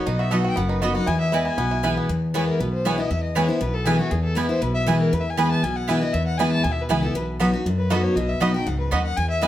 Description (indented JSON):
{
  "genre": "bluegrass",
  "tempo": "237 BPM",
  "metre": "4/4",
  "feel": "straight",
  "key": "E major",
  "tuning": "A4 = 437 Hz",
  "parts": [
    { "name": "bluegrass banjo", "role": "melody", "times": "0.0-2.1, 6.4-9.5 s", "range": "B3 to A4", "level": "-30 LUFS", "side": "right 5 dB", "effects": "none" },
    { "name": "dark fiddle", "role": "melody", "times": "0.0-9.5 s", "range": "F#4 to B5", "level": "-27 LUFS", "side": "left 2 dB", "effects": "none" },
    { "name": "picked steel-string acoustic guitar", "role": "accompaniment", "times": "0.0-9.5 s", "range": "E2 to F#4", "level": "-23 LUFS", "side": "left 1 dB", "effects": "none" },
    { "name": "upright bass", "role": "bass", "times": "0.1-9.5 s", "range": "F#1 to F#2", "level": "-26 LUFS", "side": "equal", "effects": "none" },
    { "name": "mandolin", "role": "stabs", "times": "0.3-9.5 s", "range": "B3 to B5", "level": "-27 LUFS", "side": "right 5 dB", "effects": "none" }
  ],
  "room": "moderate large studio reverb, RT60 1.0 s",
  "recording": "none",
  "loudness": "-20 LUFS",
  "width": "side -12 dB against mid",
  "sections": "0.0-2.1 A section; 2.1-9.5 A section",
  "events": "none",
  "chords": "0.0 B; 1.1 E; 7.2 B",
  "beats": "| 0.07 0.32 0.57 0.82 | 1.08 1.33 1.58 1.84 | 2.09 2.34 2.60 2.85 | 3.10 3.35 3.61 3.86 | 4.11 4.37 4.62 4.87 | 5.13 5.38 5.63 5.89 | 6.14 6.39 6.64 6.90 | 7.15 7.40 7.66 7.91 | 8.16 8.42 8.67 8.92 | 9.18 9.43"
}